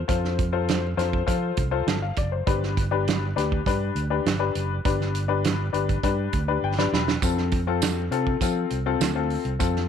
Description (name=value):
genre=uptempo 1960s-style soul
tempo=101 BPM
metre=4/4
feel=straight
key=G mixolydian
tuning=A4 = 442 Hz
part: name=fingered electric bass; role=bass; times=0.0-9.9 s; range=E1 to F3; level=-27 LUFS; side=right 1 dB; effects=tube saturation
part: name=clear upright piano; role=accompaniment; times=0.1-9.9 s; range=C4 to B5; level=-26 LUFS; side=left 10 dB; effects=none
part: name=natural country drum kit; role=drums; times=0.1-9.8 s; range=hi-hat, kick drum, snare drum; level=-26 LUFS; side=right 4 dB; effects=none
part: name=tambourine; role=percussion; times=7.2-9.7 s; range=none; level=-34 LUFS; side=right 18 dB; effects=none
room=light reverb, small room ambience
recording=1960s-style stereo with parts hard left and right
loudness=-22 LUFS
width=side -8 dB against mid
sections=0.0-9.9 A section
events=upright piano fill 6.3-7.2; drum fill 6.6-7.2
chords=0.0 F; 2.5 G; 7.2 F